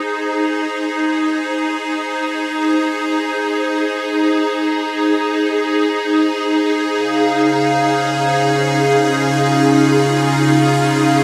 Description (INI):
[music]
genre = ambient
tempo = free time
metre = none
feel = none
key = Ab major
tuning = A4 = 440 Hz
[part]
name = evolving wavetable pad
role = sustained chords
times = 0.0-11.2 s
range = Db3 to C5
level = -17 LUFS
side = equal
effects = ensemble chorus, built-in reverb
[part]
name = glass harmonica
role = texture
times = 6.9-11.2 s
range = F5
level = -22 LUFS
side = equal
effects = none
[sound]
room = wet huge ambient reverb, RT60 7.8 s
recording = none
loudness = -16 LUFS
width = mono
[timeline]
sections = 0.0-11.2 A section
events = none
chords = 0.0 Ab; 6.9 Dbadd9